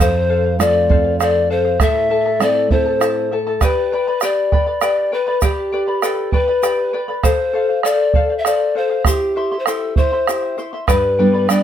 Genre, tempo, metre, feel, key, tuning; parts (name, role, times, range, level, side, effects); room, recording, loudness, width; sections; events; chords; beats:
andean folk, Andean ensemble; 66 BPM (dotted quarters); 6/8; straight; A4 = 440 Hz
mellow hollow pan flute; melody; 0.0-11.6 s; G4 to E5; -17 LUFS; left 2 dB
charango; accompaniment; 0.0-11.6 s; E4 to C6; -21 LUFS; left 3 dB
nylon-string guitar; accompaniment; 0.0-3.6, 10.9-11.6 s; F2 to F4; -20 LUFS; right 3 dB
egg shaker; percussion; 0.0-11.6 s; -29 LUFS; left 4 dB
bombo; percussion; 0.6-11.6 s; -18 LUFS; right 3 dB
light reverb; -14 LUFS; side -10 dB against mid
0.0-3.6 A section; 3.6-11.6 A section
0.0 F; 1.8 Am; 3.6 G; 7.2 F; 9.1 C; 10.9 G
0.89 | 1.80 2.70 | 3.61 4.52 | 5.42 6.33 | 7.24 8.15 | 9.06 9.97 | 10.88